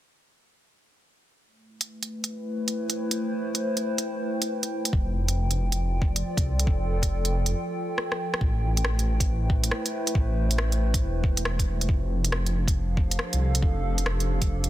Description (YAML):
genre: future garage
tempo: 138 BPM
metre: 4/4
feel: swing 64% on 16ths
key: A minor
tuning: A4 = 441 Hz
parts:
  - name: warbly tape-like pad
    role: sustained chords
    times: 2.0-14.7 s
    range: F3 to G5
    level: -30 LUFS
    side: equal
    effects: chorus, built-in reverb, sidechain pumping
  - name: organic electronic drum kit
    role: drums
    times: 1.8-14.7 s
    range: hi-hat, rim click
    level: -29 LUFS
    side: right 1 dB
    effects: soft clipping on snare
  - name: dark detuned saw bass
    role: bass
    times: 4.9-14.7 s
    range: E1 to C2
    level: -25 LUFS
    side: equal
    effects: tube saturation, sidechain pumping
  - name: electronic kick drum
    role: drums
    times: 4.9-14.5 s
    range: none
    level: -25 LUFS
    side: equal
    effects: none
room: little or no reverb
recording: dense, heavily limited modern master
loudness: -24 LUFS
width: side -14 dB against mid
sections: 1.5-8.4 A section; 8.4-14.7 B section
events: break 7.5-8.4; drum fill 8.0-8.4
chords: 1.5 Am7; 4.9 F6; 8.4 Am7; 11.9 F6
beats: | 1.46 1.89 2.33 2.76 | 3.19 3.63 4.06 4.50 | 4.93 5.37 5.80 6.24 | 6.67 7.11 7.54 7.98 | 8.41 8.85 9.28 9.72 | 10.15 10.59 11.02 11.46 | 11.89 12.32 12.76 13.20 | 13.63 14.06 14.50